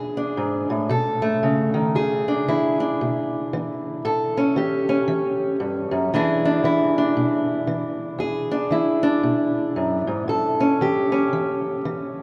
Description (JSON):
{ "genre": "blues", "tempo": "115 BPM", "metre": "4/4", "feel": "swing 60% on 8ths", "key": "E mixolydian", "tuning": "A4 = 440 Hz", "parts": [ { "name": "fingerpicked steel-string acoustic guitar", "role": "solo", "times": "0.0-12.2 s", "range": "E2 to A4", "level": "-22 LUFS", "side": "equal", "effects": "none" } ], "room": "wet cathedral reverb, RT60 6.3 s", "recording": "in a vast, echoing space", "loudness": "-22 LUFS", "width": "mono", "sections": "0.0-1.9 A section; 1.9-12.2 B section", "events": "none", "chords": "0.0 E7; 0.9 B7; 1.9 E7; 4.0 A7; 6.1 E7; 10.3 A7", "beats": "0.36 0.89 1.41 | 1.94 2.46 2.98 3.51 | 4.03 4.55 5.07 5.59 | 6.12 6.64 7.16 7.68 | 8.20 8.72 9.24 9.76 | 10.29 10.80 11.33 11.85" }